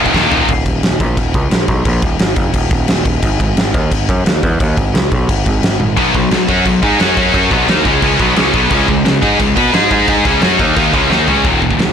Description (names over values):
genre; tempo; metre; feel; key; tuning
heavy metal; 175 BPM; 4/4; straight; Eb minor; A4 = 435 Hz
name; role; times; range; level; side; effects
scooped high-gain guitar; riff; 0.0-0.5, 6.0-11.9 s; Eb2 to Cb5; -16 LUFS; left 15 dB; distortion
scooped high-gain guitar; riff; 0.0-0.5, 6.0-11.9 s; Eb2 to Cb5; -17 LUFS; right 14 dB; distortion
tight distorted guitar; riff; 0.0-0.5, 6.0-11.4 s; Eb2 to Cb5; -17 LUFS; equal; distortion
overdriven picked electric bass; bass; 0.0-11.9 s; Eb1 to Cb3; -16 LUFS; equal; none
big rock drum kit; drums; 0.1-11.9 s; china cymbal, crash cymbal, kick drum, snare drum, toms; -15 LUFS; equal; none
room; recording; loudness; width
little or no reverb; blown-out, overdriven recording, overdrive; -10 LUFS; side -8 dB against mid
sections
0.5-11.4 A section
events
drum fill 0.1-0.5, 5.8, 11.1-11.4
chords
0.5 Eb5; 3.2 Ab5; 6.0 B5; 8.7 Db5